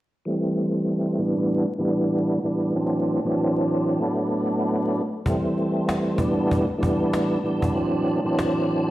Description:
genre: hip hop, boom-bap hip-hop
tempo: 96 BPM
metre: 4/4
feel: swing 57% on 16ths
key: A dorian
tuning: A4 = 440 Hz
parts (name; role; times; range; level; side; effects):
- tonewheel organ; accompaniment; 0.3-8.9 s; A2 to D4; -21 LUFS; equal; chorus vibrato, slow rotary speaker, cassette tape, high-pass filter, low-pass filter
- cajon; drums; 5.3-8.8 s; none; -27 LUFS; equal; none
room: light reverb, studio reverb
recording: played on a big sound system in a bare room, stone room reverb, vinyl crackle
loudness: -21 LUFS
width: side -15 dB against mid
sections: 0.3-8.9 A section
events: filter sweep on tonewheel organ 0.3-8.9; kick muted 7.8-8.9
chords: 0.3 Am7; 1.2 Em7/A; 2.8 D9/A; 4.0 Bm7/A; 5.3 Am7; 6.2 Em7/A; 7.8 D9/A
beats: | 0.26 0.88 1.51 2.13 | 2.76 3.38 4.01 4.63 | 5.26 5.88 6.51 7.13 | 7.76 8.38

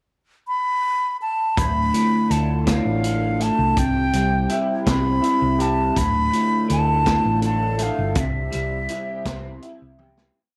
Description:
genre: psychedelic rock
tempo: 55 BPM (dotted quarters)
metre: 6/8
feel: straight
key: D dorian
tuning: A4 = 443 Hz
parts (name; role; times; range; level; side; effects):
- breathy silver concert flute; melody; 0.5-9.6 s; E5 to B5; -25 LUFS; equal; slapback echo
- soft string machine; sustained chords; 2.0-10.3 s; G3 to A4; -36 LUFS; equal; phaser, ensemble chorus
- electric guitar through a small old amp; riff; 1.6-10.4 s; D2 to G4; -25 LUFS; equal; rotary speaker, double-tracked
- hollow-body short-scale fingered electric bass; bass; 1.6-10.3 s; D1 to D2; -27 LUFS; equal; none
- vintage drum kit; drums; 1.6-10.3 s; hi-hat, kick drum, snare drum, toms; -29 LUFS; equal; none
room: light reverb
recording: none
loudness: -21 LUFS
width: mono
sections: 0.0-1.6 pickup bar; 1.6-10.4 verse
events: fade-out 8.2-10.4; drum fill 10.0-10.4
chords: 0.0 N.C.; 1.6 Dm; 3.8 C; 6.0 Dm; 8.2 C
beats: 0.48 | 1.58 2.68 | 3.77 4.87 | 5.97 7.07 | 8.17 9.26

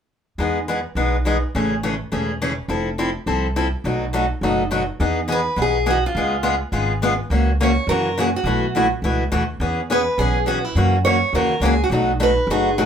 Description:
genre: acoustic string swing (jazz manouche)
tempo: 208 BPM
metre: 4/4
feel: swing 59% on 8ths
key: E major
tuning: A4 = 439 Hz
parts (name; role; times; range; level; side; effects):
- picked steel-string acoustic guitar; accompaniment; 0.4-12.9 s; B2 to A4; -20 LUFS; left 1 dB; none
- upright bass; bass; 0.4-12.9 s; E1 to F#2; -23 LUFS; equal; none
- picked steel-string acoustic guitar; melody; 5.3-12.9 s; E4 to C#5; -21 LUFS; right 2 dB; none
room: wet studio reverb, RT60 0.5 s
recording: band playing live in one room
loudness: -18 LUFS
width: side -8 dB against mid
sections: 0.4-5.0 A section; 5.0-12.9 B section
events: none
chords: 0.4 Emaj7; 1.5 Amaj7; 2.7 Fmaj7; 3.8 B7; 5.0 Emaj7; 6.2 C#7; 7.3 F#7/C#; 8.5 B7sus4; 9.6 E6; 10.8 F#7; 11.9 B7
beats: | 0.38 0.67 0.96 1.25 | 1.54 1.83 2.12 2.40 | 2.69 2.98 3.27 3.56 | 3.85 4.13 4.42 4.71 | 5.00 5.29 5.58 5.86 | 6.15 6.44 6.73 7.01 | 7.30 7.59 7.88 8.16 | 8.45 8.74 9.03 9.32 | 9.60 9.89 10.18 10.47 | 10.76 11.04 11.33 11.62 | 11.91 12.20 12.48 12.77

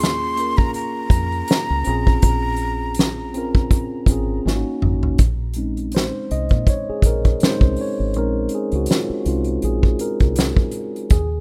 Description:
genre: R&B, neo-soul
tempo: 81 BPM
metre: 4/4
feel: swing 55% on 16ths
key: Bb minor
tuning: A4 = 440 Hz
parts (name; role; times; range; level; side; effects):
- breathy jazz flute; melody; 0.0-4.4 s; Bb5 to C6; -27 LUFS; equal; none
- mellow tine electric piano; accompaniment; 0.0-11.3 s; Ab3 to Eb5; -26 LUFS; equal; none
- deep dub fingered electric bass; bass; 0.0-11.4 s; Ab1 to Bb2; -26 LUFS; equal; none
- unplugged drum kit; drums; 0.0-11.3 s; hi-hat, kick drum, snare drum, toms; -19 LUFS; equal; none
room: small room ambience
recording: rough home demo mix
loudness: -20 LUFS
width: mono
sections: 0.0-5.2 A section; 5.2-11.4 B section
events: drum fill 4.4-5.2; tine electric piano solo 5.2-11.4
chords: 0.0 Eb9sus4; 1.9 Bbm9; 4.4 Ab9sus4; 5.2 Bbm11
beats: 0.00 0.74 1.49 | 2.23 2.97 3.71 4.45 | 5.19 5.93 6.67 7.41 | 8.15 8.89 9.63 10.37 | 11.12

